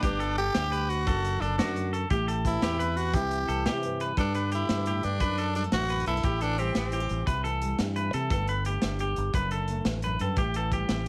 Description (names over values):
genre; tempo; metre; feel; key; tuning
highlife guitar band; 116 BPM (dotted quarters); 12/8; straight; G major; A4 = 444 Hz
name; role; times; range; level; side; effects
growling tenor saxophone; melody; 0.0-7.2 s; C4 to G4; -33 LUFS; equal; none
nylon-string guitar; accompaniment; 0.0-11.1 s; E2 to G4; -38 LUFS; equal; none
clean electric guitar; arpeggios; 0.0-11.1 s; F#4 to B4; -35 LUFS; equal; slapback echo
fingered electric bass; bass; 0.0-11.1 s; F#1 to C3; -33 LUFS; equal; none
crunchy breakbeat drum kit; drums; 0.0-11.1 s; hi-hat, kick drum, snare drum; -34 LUFS; equal; none
room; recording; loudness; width
light reverb; none; -28 LUFS; mono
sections
0.0-4.2 A section; 4.2-11.1 B section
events
none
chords
0.0 Gsus2; 1.1 D/F#; 2.1 Am7; 3.1 C; 4.2 Gsus2; 5.2 D/F#; 6.2 Am7; 7.3 C; 8.3 Gsus2; 9.3 D/F#; 10.4 Am7